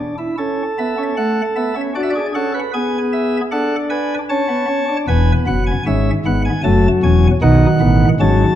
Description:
classical, baroque-style 4-part fugue for pipe organ; 77 BPM; 3/4; straight; A major; A4 = 440 Hz
chamber organ, sparkling flutes; solo; 0.0-8.6 s; E1 to A5; -14 LUFS; equal
wet recital hall reverb, RT60 1.6 s; dark, warm production, faint mains hum; -14 LUFS; side -11 dB against mid
0.4-8.6 A section
0.4 A; 2.0 Bm7/D; 2.7 E/B; 4.3 A; 5.1 E; 6.6 F#m7; 7.4 B
| 0.39 1.18 1.96 | 2.74 3.52 4.30 | 5.08 5.86 6.63 | 7.41 8.19

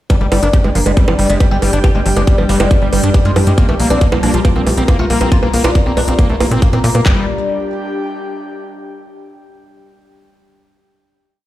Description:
psychedelic trance; 138 BPM; 4/4; straight; G minor; A4 = 440 Hz
oud; melody; 0.1-7.2 s; G3 to G4; -21 LUFS; left 2 dB; phaser, sidechain pumping, digital delay
evolving wavetable pad; sustained chords; 0.8-7.1 s; G3; -24 LUFS; left 2 dB; chorus, built-in reverb, sidechain pumping
screaming distorted acid line; riff; 0.1-7.3 s; F3 to G4; -20 LUFS; moving between left 4 dB and right 3 dB; distortion, chorus, auto-pan, sidechain pumping, digital delay
electronic hi-hat and bongos; drums; 0.1-7.0 s; -20 LUFS; right 3 dB
garage drum kit; drums; 0.1-7.2 s; handclaps, kick drum; -11 LUFS; equal
airy breathy pad; texture; 0.1-8.8 s; D4 to Bb5; -24 LUFS; left 1 dB; chorus, sidechain pumping
tight sequencer bass; bass; 0.2-7.3 s; G1 to Bb2; -15 LUFS; equal
resonant blip pluck; second line; 1.0-7.1 s; F3 to C4; -31 LUFS; right 2 dB
light reverb, digital ambience; played on a big sound system in a bare room, stone room reverb; -11 LUFS; side -14 dB against mid
0.1-7.1 groove; 7.1-8.8 final chord
0.1 G5; 3.6 Bb5; 7.1 G5
| 0.10 0.54 0.97 1.40 | 1.84 2.27 2.71 3.14 | 3.58 4.01 4.45 4.88 | 5.32 5.75 6.19 6.62 | 7.06 7.49 7.93 8.36

